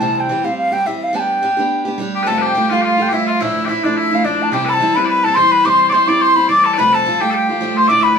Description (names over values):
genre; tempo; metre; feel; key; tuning
celtic folk, Celtic reel; 213 BPM; 4/4; swing 54% on 8ths; unclear; A4 = 440 Hz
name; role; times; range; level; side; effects
wooden flute; melody; 0.0-8.2 s; D5 to D6; -15 LUFS; left 1 dB; none
picked steel-string acoustic guitar; accompaniment; 0.0-8.2 s; D2 to G4; -20 LUFS; right 2 dB; none
loud bright bagpipes; second line; 2.1-8.2 s; D4 to E5; -19 LUFS; left 3 dB; none
room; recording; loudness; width
wet studio ambience, RT60 0.5 s; band playing live in one room; -13 LUFS; side -6 dB against mid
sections
0.0-2.3 A section; 2.3-8.2 A section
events
none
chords
0.0 C; 1.1 G; 2.3 Fadd9; 3.4 Dmadd9; 4.5 C; 6.8 Fadd9